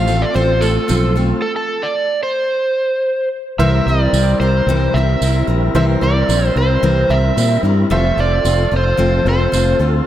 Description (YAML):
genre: folk rock and heartland rock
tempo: 111 BPM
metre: 4/4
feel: straight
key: C mixolydian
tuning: A4 = 441 Hz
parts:
  - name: overdriven slide guitar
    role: melody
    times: 0.0-9.8 s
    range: A4 to F5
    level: -18 LUFS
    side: right 1 dB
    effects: tape echo
  - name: picked steel-string acoustic guitar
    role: accompaniment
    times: 0.0-10.1 s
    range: A2 to Bb4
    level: -20 LUFS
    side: left 3 dB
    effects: none
  - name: tonewheel organ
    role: sustained chords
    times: 0.0-10.1 s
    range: C4 to Bb4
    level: -25 LUFS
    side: right 1 dB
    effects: slow rotary speaker, overdrive
  - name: fingered electric bass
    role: bass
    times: 0.0-10.0 s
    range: F1 to Bb2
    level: -16 LUFS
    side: equal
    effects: none
  - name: tambourine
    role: percussion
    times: 0.1-9.7 s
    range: none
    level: -30 LUFS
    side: right 11 dB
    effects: none
  - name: bright upright piano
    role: accompaniment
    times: 3.6-10.0 s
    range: E4 to C5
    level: -28 LUFS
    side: right 3 dB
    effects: none
room: wet lush hall reverb, RT60 2.0 s, small room ambience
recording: dreamy mix soaked in reverb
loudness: -13 LUFS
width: side -12 dB against mid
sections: 0.0-3.6 A section; 3.6-10.1 B section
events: stop 1.4-3.6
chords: 0.0 F/A; 3.6 C7; 7.9 F